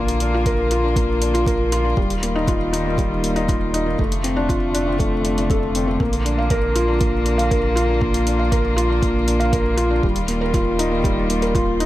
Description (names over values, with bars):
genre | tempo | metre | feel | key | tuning
piano and strings electronica | 119 BPM | 4/4 | straight | Bb major | A4 = 440 Hz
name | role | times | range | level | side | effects
muted string quartet | sustained chords | 0.0-11.9 s | D3 to F4 | -26 LUFS | left 2 dB | none
felt-muted upright piano | riff | 0.0-11.9 s | G3 to F5 | -20 LUFS | left 1 dB | tape echo
round analog bass | bass | 0.0-11.9 s | Eb1 to Bb1 | -23 LUFS | equal | tube saturation, sidechain pumping
electronic hi-hat | drums | 0.1-11.9 s | none | -30 LUFS | left 1 dB | none
electronic kick drum | drums | 0.5-11.7 s | none | -22 LUFS | right 1 dB | none
room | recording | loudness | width
light reverb, digital ambience | none | -17 LUFS | side -15 dB against mid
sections
0.0-11.9 A section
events
none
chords
0.0 Bb; 2.0 Ebadd9; 4.0 F6; 6.0 Bb; 10.0 Ebadd9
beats
0.46 0.96 1.47 | 1.97 2.48 2.98 3.49 | 3.99 4.50 5.00 5.50 | 6.01 6.51 7.02 7.52 | 8.02 8.53 9.03 9.54 | 10.04 10.54 11.05 11.55